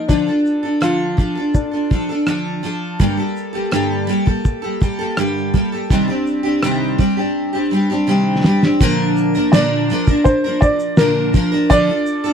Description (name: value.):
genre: acoustic pop.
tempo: 83 BPM.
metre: 4/4.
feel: straight.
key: Bb major.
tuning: A4 = 442 Hz.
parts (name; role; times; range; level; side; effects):
dark upright piano; melody; 0.0-2.6, 9.5-12.3 s; D4 to D5; -19 LUFS; left 1 dB; none.
picked steel-string acoustic guitar; accompaniment; 0.0-12.3 s; G2 to Bb4; -17 LUFS; equal; double-tracked left and right.
cloth-damped thuddy drum kit; drums; 0.1-12.3 s; kick drum, rim click, shaker, snare drum; -15 LUFS; equal; none.
room: little or no reverb.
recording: dry, close 1970s-style studio recording.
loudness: -14 LUFS.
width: side -7 dB against mid.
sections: 0.0-8.8 A section; 8.8-12.3 B section.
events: drum fill 7.4-8.8.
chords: 0.1 Dm; 3.0 Gmadd9; 5.9 Cmadd9; 8.8 Bb; 11.7 Dm.